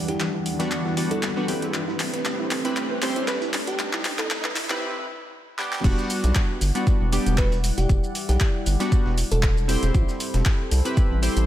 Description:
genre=deep house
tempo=117 BPM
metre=4/4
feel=swing 54% on 16ths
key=E minor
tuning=A4 = 439 Hz
part: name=bell-like FM electric piano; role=melody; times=0.0-10.0 s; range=G4 to B4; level=-32 LUFS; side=left 1 dB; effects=chorus, ping-pong delay
part: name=warm analog pad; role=sustained chords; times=0.0-11.5 s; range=G3 to B5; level=-33 LUFS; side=equal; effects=chorus, sidechain pumping
part: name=riser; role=sound effects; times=0.0-4.8 s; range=none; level=-35 LUFS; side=right 1 dB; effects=none
part: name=granular cloud pad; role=texture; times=0.0-4.8 s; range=E3 to B4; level=-31 LUFS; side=left 2 dB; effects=built-in reverb, sidechain pumping
part: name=soft round pluck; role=arpeggios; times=0.1-4.7 s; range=E4 to B4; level=-35 LUFS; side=right 5 dB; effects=analog chorus, sidechain pumping, ping-pong delay
part: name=deep house drum kit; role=drums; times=0.1-11.5 s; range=crash cymbal, handclaps, hi-hat, shaker, snare drum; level=-29 LUFS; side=equal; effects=high-pass filter on perc, small room ambience, high-pass filter on snare, high-pass filter on hats, high-pass filter on cymbals
part: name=dusty soul sampler-style drum kit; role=drums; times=0.1-11.4 s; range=hi-hat, snare drum, tambourine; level=-39 LUFS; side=left 2 dB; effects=none
part: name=warm analog keys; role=stabs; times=0.6-11.5 s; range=G3 to C5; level=-28 LUFS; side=equal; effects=chorus, tape echo
part: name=round analog bass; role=bass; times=5.8-11.5 s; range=E1 to C2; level=-22 LUFS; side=equal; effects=sidechain pumping
part: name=electronic kick drum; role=drums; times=5.8-11.1 s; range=none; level=-21 LUFS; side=equal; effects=small room ambience
room=light reverb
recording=high-pass filter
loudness=-21 LUFS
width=side -12 dB against mid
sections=0.0-5.8 A section; 5.8-11.5 B section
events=build-up 0.0-5.8; drum fill 0.0-4.8, 5.6; riser 0.0-4.8; filter sweep on synth keys 0.0-5.8; filter sweep 0.0-5.8; break 4.8-5.8; drop 5.8-11.5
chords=0.0 Em9; 1.7 Am9; 5.6 G; 5.8 Em9; 9.9 Am9

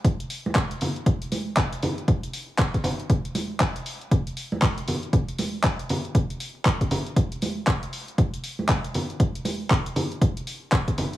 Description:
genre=house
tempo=118 BPM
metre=4/4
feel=swing 61% on 16ths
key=none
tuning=none
part: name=deep house drum kit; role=drums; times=0.0-11.2 s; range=handclaps, hi-hat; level=-29 LUFS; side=equal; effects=none
part: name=electronic kick drum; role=drums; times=0.0-11.0 s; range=none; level=-22 LUFS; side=equal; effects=overdrive
part: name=congas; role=percussion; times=0.5-11.1 s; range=none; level=-29 LUFS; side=right 1 dB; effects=none
room=light reverb, small room ambience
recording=vinyl crackle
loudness=-22 LUFS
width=side -15 dB against mid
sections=0.0-11.2 A section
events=none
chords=none

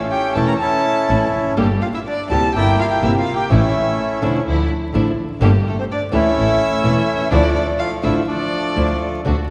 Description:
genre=tango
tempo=125 BPM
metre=4/4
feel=rubato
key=D minor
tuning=A4 = 441 Hz
part: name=bandoneon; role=melody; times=0.0-9.2 s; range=F3 to Bb4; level=-22 LUFS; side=equal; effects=none
part: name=warm violin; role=second line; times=0.1-9.0 s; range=A4 to Bb5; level=-26 LUFS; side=equal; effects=none
part: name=flamenco guitar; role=accompaniment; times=0.4-9.3 s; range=C3 to A4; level=-25 LUFS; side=equal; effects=none
part: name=warm studio string section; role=stabs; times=0.4-9.5 s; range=F3 to G4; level=-29 LUFS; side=equal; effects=none
part: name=bright double bass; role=bass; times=0.4-9.4 s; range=E1 to D2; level=-23 LUFS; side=equal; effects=none
room=wet concert hall reverb, RT60 1.9 s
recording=recorded in a church or concert hall, vinyl crackle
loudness=-18 LUFS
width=mono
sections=0.0-9.2 A section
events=none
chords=0.0 A; 1.6 Gmadd9; 2.5 C7/G; 3.5 A; 4.5 Dmadd9; 5.4 Gmadd9; 6.4 A; 7.3 Dmadd9

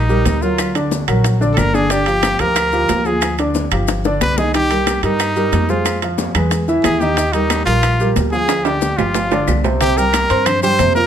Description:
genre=Afro-Cuban jazz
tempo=182 BPM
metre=4/4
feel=straight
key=unclear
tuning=A4 = 440 Hz
part: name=clear trumpet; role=melody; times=0.0-11.1 s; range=Eb4 to C5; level=-18 LUFS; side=equal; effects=none
part: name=dark baby grand piano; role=accompaniment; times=0.0-11.1 s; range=C3 to C6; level=-18 LUFS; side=right 1 dB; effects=none
part: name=upright bass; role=bass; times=0.0-11.1 s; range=G1 to G2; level=-20 LUFS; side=equal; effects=none
part: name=bongos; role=percussion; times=0.1-11.1 s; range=none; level=-25 LUFS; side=left 10 dB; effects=none
part: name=congas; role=percussion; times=0.1-11.1 s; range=none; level=-26 LUFS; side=left 1 dB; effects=none
part: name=maracas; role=percussion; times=0.1-11.1 s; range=none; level=-32 LUFS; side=left 7 dB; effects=none
part: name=timbales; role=percussion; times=0.3-11.0 s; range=none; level=-24 LUFS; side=right 11 dB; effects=none
part: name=claves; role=percussion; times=0.6-10.6 s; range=none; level=-30 LUFS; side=left 5 dB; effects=none
room=light reverb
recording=close, detailed microphones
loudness=-14 LUFS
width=side -9 dB against mid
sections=0.0-9.8 A section; 9.8-11.1 B section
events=drum fill 3.9-4.5, 8.5-9.8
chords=0.0 Ebmaj9; 0.6 Daug; 1.9 Gm7; 3.9 G5; 4.5 Cm7; 5.9 Fm; 6.5 E; 7.2 Ebmaj9; 8.5 Ddim; 9.2 G5; 9.8 C5

